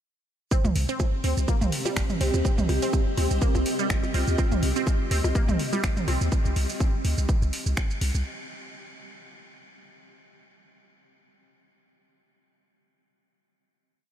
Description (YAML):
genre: minimal techno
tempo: 124 BPM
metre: 4/4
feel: swing 55% on 16ths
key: C minor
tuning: A4 = 442 Hz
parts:
  - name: resonant blip pluck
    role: riff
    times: 0.5-6.1 s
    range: G3 to C4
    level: -33 LUFS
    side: right 3 dB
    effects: phaser, sidechain pumping, diffuse ambient delay
  - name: booming analog drum machine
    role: drums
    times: 0.5-8.2 s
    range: finger snaps, hi-hat, shaker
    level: -34 LUFS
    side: right 1 dB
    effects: none
  - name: electronic kick drum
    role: drums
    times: 0.5-7.9 s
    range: none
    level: -24 LUFS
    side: equal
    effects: none
  - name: granular cloud pad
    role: texture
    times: 1.1-6.3 s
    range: C4 to Eb5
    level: -32 LUFS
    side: left 1 dB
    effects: built-in reverb, sidechain pumping
  - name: punchy sub bass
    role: bass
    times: 0.6-8.2 s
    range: G1 to Eb2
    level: -25 LUFS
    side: equal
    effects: sidechain pumping
  - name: electronic toms and percussion blips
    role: percussion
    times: 0.6-6.2 s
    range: none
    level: -32 LUFS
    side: right 1 dB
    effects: diffuse ambient delay
  - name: vibraphone with medium mallets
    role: melody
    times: 2.2-4.6 s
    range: F4 to G4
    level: -37 LUFS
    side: equal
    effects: diffuse ambient delay
room: light reverb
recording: none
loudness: -22 LUFS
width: side -10 dB against mid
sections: 0.5-8.3 drop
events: drop 0.5-8.3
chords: 0.5 Cm